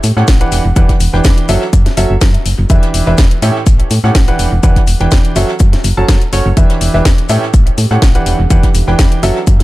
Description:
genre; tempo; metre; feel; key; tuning
piano house; 124 BPM; 4/4; swing 54% on 16ths; E dorian; A4 = 438 Hz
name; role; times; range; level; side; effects
solid FM bass; bass; 0.0-9.6 s; E1 to A2; -13 LUFS; equal; sidechain pumping
house drum kit; drums; 0.0-9.6 s; hi-hat, snare drum; -20 LUFS; left 2 dB; none
jazz brush drum kit; drums; 0.0-9.6 s; hi-hat, shaker, snare drum; -28 LUFS; left 2 dB; high-pass filter on hats, high-pass filter on snare, high-pass filter on perc, high-pass filter on room, analog delay
warbly tape-like pad; texture; 0.0-9.6 s; C#4 to E5; -31 LUFS; right 2 dB; none
clear upright piano; riff; 0.2-9.4 s; A2 to A5; -16 LUFS; right 2 dB; sidechain pumping, analog delay
electronic kick drum; drums; 0.3-9.6 s; none; -9 LUFS; equal; none
room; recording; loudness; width
small room ambience; echo-heavy mix; -8 LUFS; side -18 dB against mid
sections
0.0-9.6 A section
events
none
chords
0.0 A7; 0.5 Em7; 1.5 F#m7; 2.7 Em7; 3.4 A7; 4.4 Em7; 5.4 F#m7; 6.6 Em7; 7.3 A7; 8.3 Em7

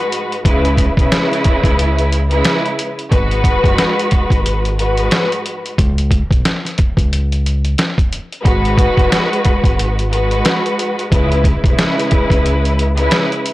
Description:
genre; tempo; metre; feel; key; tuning
hip hop, boom-bap hip-hop; 90 BPM; 4/4; swing 59% on 16ths; G# minor; A4 = 440 Hz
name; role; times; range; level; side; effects
warm studio string section; accompaniment; 0.0-13.5 s; G#2 to B4; -16 LUFS; equal; high-pass filter, low-pass filter
trip hop sampler-style drum kit; drums; 0.1-13.5 s; hi-hat, kick drum, snare drum; -15 LUFS; equal; none
deep dub fingered electric bass; bass; 0.5-13.1 s; F#1 to C#2; -16 LUFS; equal; transformer saturation
room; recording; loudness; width
little or no reverb; dry, gritty hardware recording, transformer saturation, cassette tape; -12 LUFS; side -17 dB against mid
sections
0.0-13.5 A section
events
none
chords
0.4 C#m7; 3.1 G#m7; 5.8 N.C.; 8.4 G#m7; 11.1 C#m7

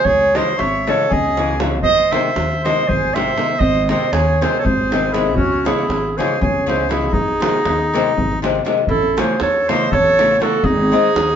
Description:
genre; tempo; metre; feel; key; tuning
balkan folk, Balkan wedding band; 238 BPM (eighths); 7/8; straight; unclear; A4 = 441 Hz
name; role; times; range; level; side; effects
mellow clarinet; melody; 0.0-11.4 s; F#4 to E5; -18 LUFS; right 3 dB; none
accordion; second line; 0.0-11.4 s; C#4 to C#5; -22 LUFS; left 2 dB; none
upright bass; bass; 0.1-11.4 s; G#1 to E2; -22 LUFS; equal; none
davul; percussion; 0.1-11.3 s; none; -22 LUFS; equal; none
nylon-string guitar; accompaniment; 0.3-11.1 s; B#2 to D#4; -21 LUFS; left 6 dB; none
room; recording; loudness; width
wet studio reverb, RT60 0.6 s; band playing live in one room, nothing above 7.6 kHz; -14 LUFS; side -8 dB against mid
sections
0.0-8.9 A section; 8.9-11.4 B section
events
none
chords
0.0 C#m; 1.8 G#; 5.4 C#m; 7.1 G#; 8.9 A; 10.6 G#

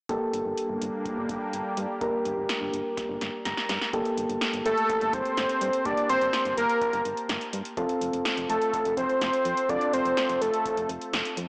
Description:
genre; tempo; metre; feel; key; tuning
synth-pop; 125 BPM; 4/4; straight; G minor; A4 = 441 Hz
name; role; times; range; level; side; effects
soft electric-piano-like synth keys; accompaniment; 0.1-11.5 s; Bb3 to Bb5; -31 LUFS; equal; chorus
phased analog pad; sustained chords; 0.5-3.9 s; G3 to G4; -34 LUFS; equal; phaser, chorus
solid FM bass; bass; 0.1-11.5 s; F1 to G2; -37 LUFS; equal; transformer saturation
electro analog drum machine; drums; 0.1-11.5 s; hi-hat, kick drum, snare drum; -32 LUFS; equal; none
fat analog lead; melody; 4.7-10.9 s; A4 to D5; -24 LUFS; equal; chorus, digital delay
room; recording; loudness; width
moderate concert hall reverb, RT60 1.9 s; blown-out, overdriven recording, overdrive, small speaker sound; -24 LUFS; side -38 dB against mid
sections
0.1-3.9 A section; 3.9-11.5 B section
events
drum fill 3.0-3.9; synth keys fill 3.2-3.9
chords
0.1 Gmadd9; 7.8 F

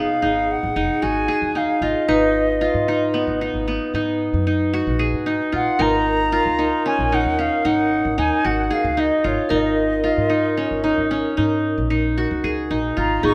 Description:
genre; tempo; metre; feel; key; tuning
contemporary instrumental, chamber music in an uneven meter; 113 BPM; 7/4; straight; unclear; A4 = 440 Hz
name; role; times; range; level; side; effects
bright reedy wooden flute; melody; 0.0-13.3 s; C#5 to C#6; -24 LUFS; equal; none
vibraphone with medium hard mallets; second line; 0.0-13.3 s; G#4 to B4; -30 LUFS; equal; none
qanun; arpeggios; 0.0-13.3 s; B3 to G#4; -23 LUFS; equal; none
upright bass; bass; 0.0-13.3 s; E#1 to G#2; -29 LUFS; equal; none
warm chamber string section; sustained chords; 13.2-13.3 s; B2 to D#4; -29 LUFS; equal; none
room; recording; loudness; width
moderate recital hall reverb, RT60 1.9 s; none; -20 LUFS; mono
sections
0.0-13.3 A section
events
none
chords
0.0 G#m; 2.1 B/G#; 5.8 F#6/G#

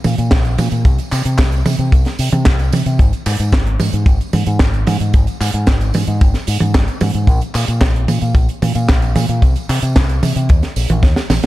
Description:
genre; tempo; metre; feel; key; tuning
italo disco; 112 BPM; 4/4; straight; unclear; A4 = 440 Hz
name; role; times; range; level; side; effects
tight funk drum kit; drums; 0.0-11.5 s; handclaps, hi-hat, snare drum, tambourine, toms; -19 LUFS; right 2 dB; small room ambience
fingered electric bass with an envelope filter; bass; 0.1-11.5 s; Ab1 to C3; -16 LUFS; equal; tube saturation
kick drum; drums; 0.3-11.1 s; none; -13 LUFS; equal; small room ambience
room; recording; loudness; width
little or no reverb; dark, warm production; -12 LUFS; side -16 dB against mid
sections
0.0-11.5 A section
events
drum fill 11.0-11.5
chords
none

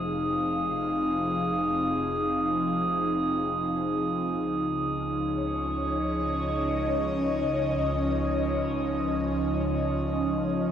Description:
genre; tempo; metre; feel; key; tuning
ambient; free time; none; none; unclear; A4 = 440 Hz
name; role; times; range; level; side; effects
airy breathy pad; sustained chords; 0.0-10.7 s; Db3 to F5; -29 LUFS; equal; chorus, phaser
clear chamber double bass section; bass; 0.0-10.7 s; F1 to Db2; -35 LUFS; equal; tube saturation
organ-like drone; drone; 0.2-10.7 s; F3; -37 LUFS; left 1 dB; ensemble chorus, built-in reverb
glass harmonica; texture; 0.0-10.7 s; Eb4 to Eb6; -28 LUFS; equal; none
room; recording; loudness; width
wet cathedral reverb, RT60 6.5 s; in a vast, echoing space; -25 LUFS; side -9 dB against mid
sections
0.0-10.7 A section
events
fade-in on analog synth pad 0.0-10.7; fade-in on double bass section 0.0-10.7; fade-in on synth drone 0.0-10.7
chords
0.0 Fm; 4.4 Dbsus2

